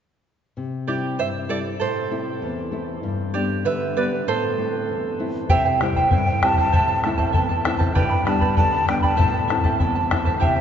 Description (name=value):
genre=andean folk, Andean ensemble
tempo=97 BPM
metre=2/4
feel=straight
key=A minor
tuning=A4 = 441 Hz
part: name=nylon-string guitar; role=accompaniment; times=0.6-10.6 s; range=E2 to E4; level=-25 LUFS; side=left 3 dB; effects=none
part: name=charango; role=accompaniment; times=0.9-10.6 s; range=E4 to B5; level=-24 LUFS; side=right 4 dB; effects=none
part: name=hollow quena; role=melody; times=5.5-10.6 s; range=E5 to A5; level=-24 LUFS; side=equal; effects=none
part: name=bombo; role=percussion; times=5.5-10.6 s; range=none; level=-21 LUFS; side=left 1 dB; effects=none
room=wet cathedral reverb, RT60 7.6 s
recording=recorded in a church or concert hall, nothing above 7.7 kHz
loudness=-19 LUFS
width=side -8 dB against mid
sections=0.6-5.5 A section; 5.5-10.6 B section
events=charango solo 0.6-5.5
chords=0.6 C; 1.8 Am; 3.0 G; 4.3 Am; 5.5 C; 6.7 Am; 8.0 G; 9.2 Am